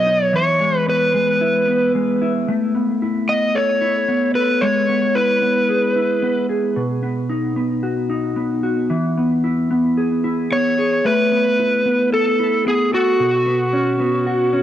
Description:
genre	dream pop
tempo	112 BPM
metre	4/4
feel	straight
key	E major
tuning	A4 = 440 Hz
part	overdriven slide guitar	melody	0.0-6.5, 10.5-14.6 s	F#4 to D#5	-17 LUFS	equal	cassette tape, analog delay
part	mellow electric guitar	arpeggios	0.0-14.6 s	B2 to A4	-19 LUFS	left 1 dB	lush chorus, cassette tape, analog delay
room	moderate studio reverb, RT60 0.5 s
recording	home recording on cassette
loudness	-16 LUFS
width	side -11 dB against mid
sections	0.0-14.6 A section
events	none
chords	0.3 E; 2.5 Asus2; 4.6 E/G#; 6.8 B; 8.9 E; 11.1 Asus2; 13.2 Bsus2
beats	| 0.34 0.87 1.41 1.94 | 2.48 3.02 3.55 4.09 | 4.62 5.16 5.69 6.23 | 6.76 7.30 7.84 8.37 | 8.91 9.44 9.98 10.52 | 11.05 11.59 12.12 12.66 | 13.19 13.73 14.27

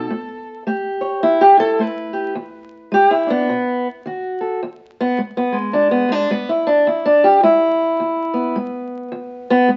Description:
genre	acoustic country blues, solo or duo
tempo	106 BPM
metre	4/4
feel	swing 60% on 8ths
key	E mixolydian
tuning	A4 = 439 Hz
part	fingerpicked steel-string acoustic guitar	solo	0.0-9.8 s	E2 to C#5	-17 LUFS	equal	none
room	moderate studio reverb, RT60 0.7 s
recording	very old 78 rpm record, vinyl crackle, nothing above 7.8 kHz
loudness	-17 LUFS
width	mono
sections	0.0-4.6 A section; 4.6-9.8 A section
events	steel-string acoustic guitar solo 0.0-4.6, 4.6-9.8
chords	0.1 A7(no3); 2.4 E7; 3.5 B7; 4.6 E7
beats	| 0.10 0.67 1.23 1.80 | 2.36 2.93 3.49 4.06 | 4.62 5.18 5.75 6.31 | 6.88 7.44 8.00 8.56 | 9.12 9.69

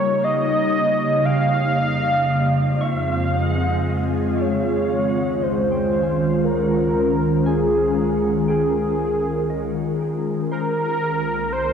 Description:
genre	ambient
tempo	59 BPM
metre	3/4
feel	straight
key	unclear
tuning	A4 = 440 Hz
part	warm velvety synth lead	melody	0.0-11.7 s	Ab4 to F5	-22 LUFS	equal	chorus, diffuse ambient delay
part	ethereal airy pad	sustained chords	0.0-11.7 s	F2 to C5	-20 LUFS	equal	ensemble chorus, built-in reverb, phaser
part	mellow electric guitar	arpeggios	0.0-11.7 s	C5 to Db6	-42 LUFS	right 1 dB	none
part	round analog bass	bass	4.4-11.7 s	C2 to Db2	-34 LUFS	equal	none
room	wet huge ambient reverb, RT60 7.7 s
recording	dark, warm production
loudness	-18 LUFS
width	side -7 dB against mid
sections	0.0-4.4 A section; 4.4-11.7 B section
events	filter sweep on ambient pad 0.0-4.4, 4.4-11.7; fade-in on analog synth bass 4.4-11.7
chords	0.0 Eb7; 1.3 Dbmaj7/F; 4.4 Db69; 10.5 Cm7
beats	0.24 | 1.26 2.29 3.33 | 4.38 5.41 6.44 | 7.46 8.48 9.49 | 10.51 11.54

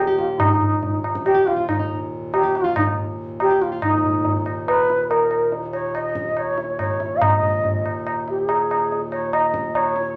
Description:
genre	indian classical, Hindustani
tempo	141 BPM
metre	4/4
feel	straight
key	Eb major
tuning	A4 = 437 Hz
part	mellow bansuri	melody	0.0-10.2 s	Eb4 to F5	-23 LUFS	equal	none
part	nylon-string guitar	second line	0.0-3.9 s	Eb4 to G4	-30 LUFS	equal	none
part	hand-pumped harmonium	drone	0.0-10.2 s	Eb2 to Bb2	-33 LUFS	equal	none
part	tabla	percussion	0.2-10.1 s	none	-25 LUFS	equal	none
room	wet club reverb, RT60 0.6 s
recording	none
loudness	-21 LUFS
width	mono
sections	0.0-3.8 A section; 3.8-10.2 B section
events	none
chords	none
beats	| 0.40 0.83 1.25 1.68 | 2.11 2.54 2.97 3.39 | 3.82 4.25 4.67 5.10 | 5.52 5.95 6.37 6.80 | 7.22 7.64 8.07 8.49 | 8.91 9.33 9.75

